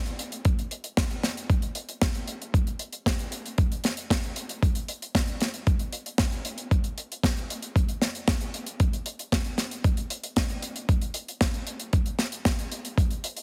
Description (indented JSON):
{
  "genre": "italo disco",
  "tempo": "115 BPM",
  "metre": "4/4",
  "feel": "straight",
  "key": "none",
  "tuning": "none",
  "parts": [
    { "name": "tight funk drum kit", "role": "drums", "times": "0.1-13.4 s", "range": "hi-hat, snare drum", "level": "-32 LUFS", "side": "equal", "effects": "none" },
    { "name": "electronic kick drum", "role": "drums", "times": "0.5-13.1 s", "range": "none", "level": "-27 LUFS", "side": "equal", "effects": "overdrive" }
  ],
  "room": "light reverb",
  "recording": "heavily compressed radio sound",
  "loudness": "-28 LUFS",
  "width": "mono",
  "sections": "0.0-13.4 A section",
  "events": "none",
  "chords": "none"
}